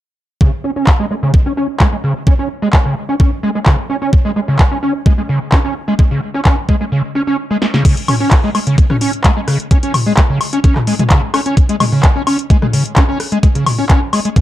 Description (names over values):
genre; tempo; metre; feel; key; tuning
acid house; 129 BPM; 4/4; straight; unclear; A4 = 441 Hz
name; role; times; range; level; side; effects
overdriven acid bass; riff; 0.4-14.4 s; C#3 to C#4; -16 LUFS; equal; ensemble chorus, sidechain pumping, tape echo
electronic kick drum; drums; 0.4-14.4 s; none; -11 LUFS; equal; none
electro analog drum machine; drums; 0.9-14.4 s; crash cymbal, handclaps, hi-hat, rim click, snare drum, toms, woodblock; -17 LUFS; left 1 dB; none
room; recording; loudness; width
light reverb, digital ambience; dark, warm production; -11 LUFS; side -14 dB against mid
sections
0.4-7.8 A section; 7.8-14.4 B section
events
filter sweep on acid bass 0.4-7.8; drum fill 7.6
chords
none